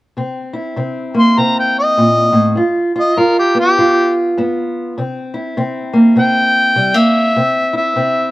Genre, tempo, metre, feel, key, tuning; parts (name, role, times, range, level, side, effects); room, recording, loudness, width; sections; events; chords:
acoustic country blues, solo or duo; 100 BPM; 4/4; swing 61% on 8ths; C mixolydian; A4 = 437 Hz
fingerpicked steel-string acoustic guitar; accompaniment; 0.2-8.3 s; G2 to F4; -14 LUFS; equal
mellow harmonica; melody; 1.2-8.3 s; G4 to C6; -13 LUFS; equal; slapback echo
little or no reverb; recorded outdoors, with no room sound; -11 LUFS; side -18 dB against mid
0.2-8.3 A section
0.2 C7; 2.6 G7; 5.0 C7